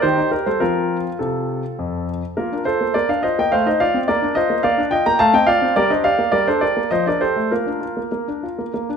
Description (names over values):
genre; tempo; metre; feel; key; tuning
classical-period piano sonatina; 104 BPM; 3/4; uneven beats, rubato; Bb major; A4 = 440 Hz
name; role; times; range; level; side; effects
clear concert grand piano; solo; 0.0-9.0 s; F2 to Bb5; -16 LUFS; equal; none
room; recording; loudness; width
moderate recital hall reverb, RT60 1.5 s; minimal, uncompressed stereo recording; -16 LUFS; side -6 dB against mid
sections
0.0-9.0 A section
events
none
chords
0.0 Eb; 0.6 F; 2.4 Bb; 3.5 F7/A; 4.1 Bb; 5.2 F/A; 5.8 Gm; 6.9 F69; 7.5 Bb